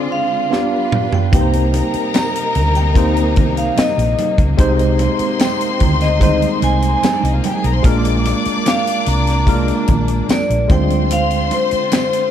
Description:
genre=lush 1970s-style soul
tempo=74 BPM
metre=4/4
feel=straight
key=C minor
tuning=A4 = 438 Hz
part: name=vibraphone with medium hard mallets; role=melody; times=0.0-12.3 s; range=C5 to Bb5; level=-21 LUFS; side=right 1 dB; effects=tape echo
part: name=bright tine electric piano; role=accompaniment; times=0.0-12.3 s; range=G3 to D5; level=-20 LUFS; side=equal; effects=overdrive, fast stereo tremolo
part: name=rich studio string section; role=sustained chords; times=0.0-12.3 s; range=C3 to B4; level=-27 LUFS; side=left 2 dB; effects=none
part: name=tight funk drum kit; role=drums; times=0.5-12.3 s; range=hi-hat, kick drum, snare drum, toms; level=-17 LUFS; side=equal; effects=none
part: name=rich studio string section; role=second line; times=1.3-12.3 s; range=D4 to D6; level=-24 LUFS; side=left 4 dB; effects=tape echo
part: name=hollow-body short-scale fingered electric bass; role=bass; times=1.3-11.8 s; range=Bb1 to D2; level=-18 LUFS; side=equal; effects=none
part: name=congas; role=percussion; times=1.3-12.1 s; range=none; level=-26 LUFS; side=right 5 dB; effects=none
part: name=tambourine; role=percussion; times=2.1-12.1 s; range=none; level=-35 LUFS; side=left 5 dB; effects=none
room=light reverb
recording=dark, warm production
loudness=-13 LUFS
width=side -10 dB against mid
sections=0.0-12.3 A section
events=drum fill 0.5-1.3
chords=0.0 Dm7b5; 0.5 G7; 1.3 Cm7; 4.6 Abmaj7/C; 7.8 Bb7; 10.7 Dm7b5

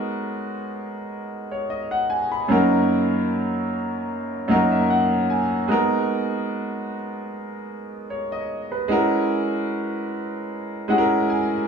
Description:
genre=R&B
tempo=75 BPM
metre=4/4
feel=swing 54% on 16ths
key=G# minor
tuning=A4 = 441 Hz
part: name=clear concert grand piano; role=solo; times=0.0-11.7 s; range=F#2 to B5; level=-21 LUFS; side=equal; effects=tape echo
room=moderate studio reverb, RT60 0.6 s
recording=small room ambience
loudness=-20 LUFS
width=side -6 dB against mid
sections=0.0-11.7 A section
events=grand piano fill 4.1-5.7, 10.5-11.7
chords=0.0 G#m7; 2.5 D#m7/F#; 5.7 G#m7; 8.9 F#7

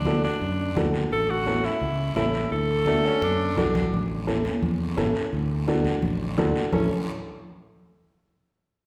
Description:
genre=latin, cumbia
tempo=171 BPM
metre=4/4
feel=straight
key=A major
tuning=A4 = 442 Hz
part: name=edgy alto saxophone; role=melody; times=0.0-3.7 s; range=D4 to A4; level=-29 LUFS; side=equal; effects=none
part: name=fingered electric bass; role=bass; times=0.0-6.9 s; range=A1 to F#2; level=-30 LUFS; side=equal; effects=none
part: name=warm upright piano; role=accompaniment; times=0.1-6.9 s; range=C#4 to A4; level=-30 LUFS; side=equal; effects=none
part: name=congas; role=percussion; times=0.1-6.8 s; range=none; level=-32 LUFS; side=equal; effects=none
part: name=guiro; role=percussion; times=0.1-6.8 s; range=none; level=-42 LUFS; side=equal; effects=none
part: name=growling tenor saxophone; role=second line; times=2.9-3.9, 6.7-6.9 s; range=A3 to D4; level=-34 LUFS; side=equal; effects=none
room=wet recital hall reverb, RT60 1.5 s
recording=recorded in a church or concert hall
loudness=-25 LUFS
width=mono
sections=0.0-3.9 A section; 3.9-6.7 B section; 6.7-8.1 C section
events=drum fill 3.2-3.9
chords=0.0 D; 1.1 A; 2.5 D; 3.9 A; 5.3 D; 6.7 A

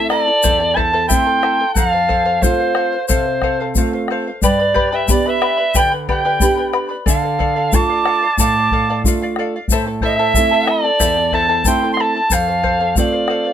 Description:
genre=andean folk, Andean ensemble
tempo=91 BPM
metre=4/4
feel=straight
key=A minor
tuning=A4 = 442 Hz
part: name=warm soprano saxophone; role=melody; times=0.0-13.5 s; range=C5 to C6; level=-17 LUFS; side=left 1 dB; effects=none
part: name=breathy bright large quena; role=second line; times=0.0-13.5 s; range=D5 to D6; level=-21 LUFS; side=right 7 dB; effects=none
part: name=charango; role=accompaniment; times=0.0-13.5 s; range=E4 to B5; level=-22 LUFS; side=left 4 dB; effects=none
part: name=nylon-string guitar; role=accompaniment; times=0.0-13.5 s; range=E2 to G4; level=-22 LUFS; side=right 4 dB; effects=none
part: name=bombo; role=percussion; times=0.1-13.4 s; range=none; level=-19 LUFS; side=left 2 dB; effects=none
part: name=tube shaker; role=percussion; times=0.4-13.1 s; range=none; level=-22 LUFS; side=left 8 dB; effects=none
room=light reverb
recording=close, detailed microphones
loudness=-13 LUFS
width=side -10 dB against mid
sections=0.0-13.5 A section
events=none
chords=0.0 Am; 1.8 F; 4.4 G; 7.1 Dm; 9.7 Am; 12.3 F

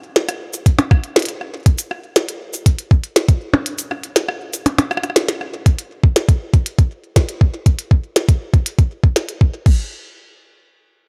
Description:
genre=IDM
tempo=120 BPM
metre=4/4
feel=straight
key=none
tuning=none
part: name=glitchy drum kit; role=drums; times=0.2-9.8 s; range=cabasa, crash cymbal, hi-hat, percussion blips, rim click, snare drum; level=-20 LUFS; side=equal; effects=overdrive, digital delay
part: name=electronic kick drum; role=drums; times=0.7-9.8 s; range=none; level=-14 LUFS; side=equal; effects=overdrive
room=little or no reverb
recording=dark, warm production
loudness=-17 LUFS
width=mono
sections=0.0-5.7 A section; 5.7-9.7 B section; 9.7-11.1 C section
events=break 3.7-5.7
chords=none

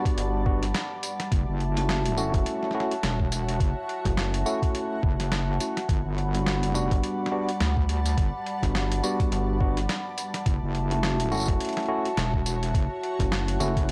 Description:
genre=glitch hop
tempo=105 BPM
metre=4/4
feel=swing 58% on 16ths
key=F# phrygian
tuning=A4 = 440 Hz
part: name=dark analog pad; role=sustained chords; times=0.0-13.9 s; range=G3 to B5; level=-36 LUFS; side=equal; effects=chorus, sidechain pumping
part: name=tine electric piano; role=stabs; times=0.0-13.9 s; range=G3 to F#4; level=-33 LUFS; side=equal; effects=sidechain pumping, analog delay
part: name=granular cloud pad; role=texture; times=0.0-13.9 s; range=G3 to A5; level=-41 LUFS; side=equal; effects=built-in reverb, sidechain pumping
part: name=boom bap sampler-style drum kit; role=drums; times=0.1-13.9 s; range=hi-hat, snare drum, tambourine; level=-34 LUFS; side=equal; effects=small room ambience
part: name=electronic kick drum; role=drums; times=0.1-13.9 s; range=none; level=-28 LUFS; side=equal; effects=small room ambience
part: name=rubbery square bass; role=bass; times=0.2-13.6 s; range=F#1 to G1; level=-30 LUFS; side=equal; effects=none
part: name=wobble bass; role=bass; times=1.3-13.9 s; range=E1 to D2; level=-29 LUFS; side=equal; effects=chorus, tube saturation
room=digital ambience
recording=dry, gritty hardware recording, cassette tape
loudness=-26 LUFS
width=mono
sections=0.0-13.9 A section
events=none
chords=0.0 Gmaj7; 1.3 F#m7; 5.9 Gmaj7; 10.5 F#m7

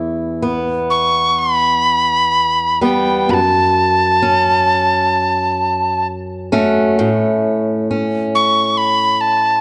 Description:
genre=celtic folk, Celtic slow air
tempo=62-70 BPM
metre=4/4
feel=rubato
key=E dorian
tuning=A4 = 440 Hz
part: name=fingerpicked swing-style acoustic guitar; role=accompaniment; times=0.0-9.6 s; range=E2 to F#4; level=-20 LUFS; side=equal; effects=none
part: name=breathy tin whistle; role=melody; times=0.9-9.6 s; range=G5 to C#6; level=-16 LUFS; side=equal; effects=none
room=moderate concert hall reverb, RT60 2.0 s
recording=nothing above 11.0 kHz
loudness=-15 LUFS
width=mono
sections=0.0-9.6 A section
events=none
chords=0.0 Em; 3.3 F#m; 7.0 A

